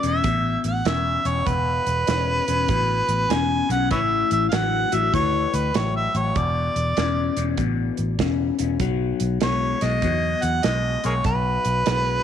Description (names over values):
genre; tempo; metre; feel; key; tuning
electric blues shuffle; 98 BPM; 4/4; swing 65% on 8ths; E mixolydian; A4 = 440 Hz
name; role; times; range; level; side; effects
warm harmonica; melody; 0.0-12.2 s; G#4 to G#5; -23 LUFS; right 2 dB; overdrive
electric guitar through a small old amp; riff; 0.0-12.2 s; E2 to G#3; -26 LUFS; left 12 dB; phaser
vintage muted fingered electric bass; bass; 0.0-12.2 s; E1 to E2; -25 LUFS; right 1 dB; none
warm soul drum kit; drums; 0.0-12.1 s; hi-hat, kick drum, snare drum; -28 LUFS; right 6 dB; none
room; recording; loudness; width
light reverb, studio ambience; 1960s-style stereo with parts hard left and right; -20 LUFS; side -9 dB against mid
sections
0.0-12.2 A section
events
none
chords
0.0 E5; 3.9 A5; 6.4 E5; 8.8 B5